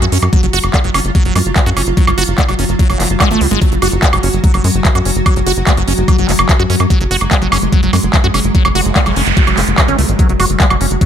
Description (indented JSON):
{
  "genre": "psychedelic trance",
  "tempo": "146 BPM",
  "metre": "4/4",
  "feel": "straight",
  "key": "unclear",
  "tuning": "A4 = 440 Hz",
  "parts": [
    { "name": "pulsing gated texture", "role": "sustained chords", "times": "0.0-11.1 s", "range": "F#3 to F#4", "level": "-19 LUFS", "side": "equal", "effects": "chorus, built-in reverb, sidechain pumping" },
    { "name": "liquid acid bass", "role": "riff", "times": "0.0-11.1 s", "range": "F#3 to F#4", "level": "-19 LUFS", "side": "right 1 dB", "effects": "phaser, auto-pan, sidechain pumping, dub echo" },
    { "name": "tight sequencer bass", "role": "bass", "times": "0.0-11.0 s", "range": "F#1 to F#2", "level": "-16 LUFS", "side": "equal", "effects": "none" },
    { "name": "techno drum kit", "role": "drums", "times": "0.0-11.1 s", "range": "handclaps, hi-hat, woodblock", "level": "-17 LUFS", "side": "right 1 dB", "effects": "overdrive" },
    { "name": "electronic kick drum", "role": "drums", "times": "0.3-11.1 s", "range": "none", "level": "-12 LUFS", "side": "equal", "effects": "overdrive" },
    { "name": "noise sweep", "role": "sound effects", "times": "8.7-10.2 s", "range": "none", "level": "-21 LUFS", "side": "right 5 dB", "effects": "none" }
  ],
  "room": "light reverb, digital ambience",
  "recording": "none",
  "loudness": "-10 LUFS",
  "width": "side -9 dB against mid",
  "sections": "0.0-11.1 A section",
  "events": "noise sweep 8.7-10.2",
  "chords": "0.0 F#5",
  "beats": "| 0.33 0.74 1.15 1.56 | 1.97 2.38 2.79 3.20 | 3.62 4.03 4.44 4.85 | 5.26 5.67 6.08 6.49 | 6.90 7.31 7.72 8.14 | 8.55 8.96 9.37 9.78 | 10.19 10.60 11.01"
}